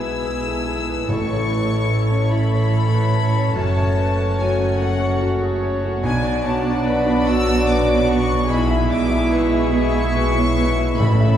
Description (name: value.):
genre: cinematic.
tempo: 48 BPM (dotted quarters).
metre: 6/8.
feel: rubato.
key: unclear.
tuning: A4 = 440 Hz.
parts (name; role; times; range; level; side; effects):
rich studio violin section; melody; 0.0-11.4 s; F#5 to E6; -26 LUFS; left 4 dB; none.
warm studio violin section; second line; 0.0-11.4 s; F#4 to E5; -27 LUFS; left 3 dB; none.
clear concert grand piano; accompaniment; 0.0-11.4 s; A1 to E5; -24 LUFS; left 2 dB; none.
warm studio viola section; accompaniment; 0.0-11.4 s; B3 to F#4; -27 LUFS; right 2 dB; none.
dark French horn section; sustained chords; 0.0-11.4 s; F#3 to E4; -26 LUFS; left 1 dB; none.
dark studio double bass section; bass; 0.0-11.4 s; F#1 to B1; -23 LUFS; right 2 dB; none.
warm studio cello section; bass; 0.0-11.4 s; F#2 to B2; -23 LUFS; right 2 dB; none.
timpani; percussion; 1.1-2.3, 11.0-11.4 s; A2; -25 LUFS; left 1 dB; none.
room: wet scoring stage reverb, RT60 1.8 s.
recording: heard from further back in the room.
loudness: -16 LUFS.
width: side -10 dB against mid.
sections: 0.0-11.4 A section.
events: none.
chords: 0.0 E/B; 1.1 A; 3.6 F#m; 6.0 Bm; 8.5 E/B.